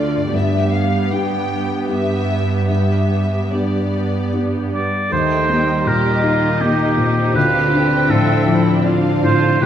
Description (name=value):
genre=cinematic, emotional film score for orchestra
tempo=72-81 BPM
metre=3/4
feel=rubato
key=unclear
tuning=A4 = 439 Hz
part: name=muted studio violin section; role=melody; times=0.0-9.7 s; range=D5 to G5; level=-26 LUFS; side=left 2 dB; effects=none
part: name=felt-muted upright piano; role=accompaniment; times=0.0-9.7 s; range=C2 to G4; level=-20 LUFS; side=left 1 dB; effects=none
part: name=muted studio viola section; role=accompaniment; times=0.0-9.7 s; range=G3 to E5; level=-23 LUFS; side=right 2 dB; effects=none
part: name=muted studio cello section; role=bass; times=0.0-9.7 s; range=G2 to Eb3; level=-22 LUFS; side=right 2 dB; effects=none
part: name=concert harp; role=arpeggios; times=0.2-9.7 s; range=G2 to Eb5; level=-25 LUFS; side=left 6 dB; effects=none
part: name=clear oboe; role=second line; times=4.7-9.7 s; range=G4 to D5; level=-19 LUFS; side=right 2 dB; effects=none
part: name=muted studio violin section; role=second line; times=5.1-9.7 s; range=D4 to G4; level=-27 LUFS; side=left 1 dB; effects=none
room=moderate scoring stage reverb, RT60 2.0 s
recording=nothing above 10.3 kHz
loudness=-15 LUFS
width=side -10 dB against mid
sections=0.0-5.1 A section; 5.1-9.7 B section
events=none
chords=0.3 G; 5.1 Eb; 7.4 Dm7